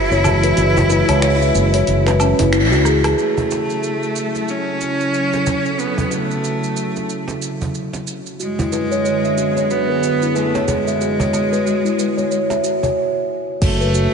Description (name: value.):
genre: organic downtempo.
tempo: 92 BPM.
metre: 4/4.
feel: swing 59% on 16ths.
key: F# minor.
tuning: A4 = 440 Hz.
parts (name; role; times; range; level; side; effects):
bright cello; melody; 0.0-14.1 s; G#3 to E4; -21 LUFS; right 1 dB; ping-pong delay, slapback echo.
warm analog pad; sustained chords; 0.0-14.1 s; F#2 to B4; -24 LUFS; equal; chorus, sidechain pumping.
steel tongue drum; arpeggios; 0.0-3.2, 8.4-14.1 s; C#4 to E5; -19 LUFS; left 1 dB; ping-pong delay, slapback echo.
fretless electric bass; bass; 0.1-3.1, 13.6-14.1 s; F#1 to C#2; -17 LUFS; equal; none.
deep house drum kit; drums; 0.1-14.1 s; crash cymbal, finger snaps, hi-hat, rim click, shaker, woodblock; -25 LUFS; right 1 dB; none.
cajon; percussion; 0.1-12.9 s; none; -28 LUFS; right 2 dB; none.
electronic kick drum; drums; 13.6-13.8 s; none; -20 LUFS; equal; none.
room: wet lush hall reverb, RT60 3.0 s.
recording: big arena sound, nothing above 10.7 kHz.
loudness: -15 LUFS.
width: side -6 dB against mid.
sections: 0.0-3.2 A section; 3.2-13.6 B section.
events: kick drops out 0.6-3.2; band accent 2.5-2.9; drum fill 2.9-3.2; break 13.0-13.6.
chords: 0.0 E/F#; 3.2 F#m7; 8.4 E7/F#; 13.6 F#m.